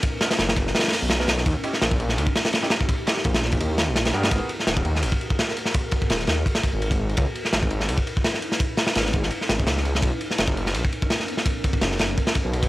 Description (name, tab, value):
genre	drum and bass, jungle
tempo	168 BPM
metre	4/4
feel	swing 54% on 16ths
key	G# minor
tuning	A4 = 440 Hz
part	ethereal airy pad	sustained chords	0.0-12.7 s	B3 to B4	-33 LUFS	left 1 dB	ensemble chorus, built-in reverb
part	crunchy breakbeat drum kit	drums	0.0-12.7 s	hi-hat, kick drum, ride cymbal, snare drum	-22 LUFS	equal	none
part	bright concert grand piano	stabs	0.2-4.5 s	B3 to A#4	-33 LUFS	right 2 dB	none
part	detuned saw bass	bass	0.4-12.7 s	D#1 to G2	-24 LUFS	equal	tube saturation
room	small room ambience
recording	dry, gritty hardware recording, transformer saturation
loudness	-20 LUFS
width	side -17 dB against mid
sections	0.0-4.3 A section; 4.3-12.7 A section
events	drop 0.0-4.3, 4.3-12.7; kick drops out 3.6-4.3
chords	0.0 Bmaj9; 1.5 D#7b9; 4.3 G#m9; 7.2 C#m9; 10.0 Bmaj9